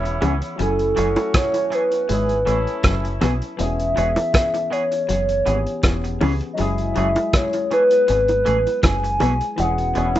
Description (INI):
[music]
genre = lovers rock reggae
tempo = 80 BPM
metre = 4/4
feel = swing 54% on 16ths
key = unclear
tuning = A4 = 441 Hz
[part]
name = hollow clarinet-like synth lead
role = melody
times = 0.0-10.2 s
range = A4 to G#5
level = -20 LUFS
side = equal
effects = chorus, tape echo
[part]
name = warm horn section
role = second line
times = 0.0-3.2, 10.0-10.2 s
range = A3 to G#4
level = -30 LUFS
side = right 1 dB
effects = tape echo
[part]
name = barky tine electric piano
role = accompaniment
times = 0.0-10.2 s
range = E3 to G#5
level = -30 LUFS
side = left 3 dB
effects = overdrive, lush chorus, tape echo
[part]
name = electric guitar through a small old amp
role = riff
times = 0.0-10.1 s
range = E3 to C#4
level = -29 LUFS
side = left 7 dB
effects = tape echo
[part]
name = twangy electric guitar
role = stabs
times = 0.0-10.1 s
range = E3 to G#4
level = -32 LUFS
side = right 5 dB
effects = tape echo
[part]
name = deep dub fingered electric bass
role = bass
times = 0.0-10.2 s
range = E1 to C#2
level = -23 LUFS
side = equal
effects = none
[part]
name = crunchy breakbeat drum kit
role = drums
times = 0.1-10.2 s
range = hi-hat, kick drum, rim click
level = -22 LUFS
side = equal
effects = none
[part]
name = bongos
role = percussion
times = 0.2-10.2 s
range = none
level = -28 LUFS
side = right 1 dB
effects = tape echo
[sound]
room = light reverb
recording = rough home demo mix, nothing above 7.9 kHz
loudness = -17 LUFS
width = side -13 dB against mid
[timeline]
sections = 0.0-10.2 A section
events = none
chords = 0.0 E6; 0.6 F#m9; 3.6 E6; 6.6 F#m9; 9.6 E6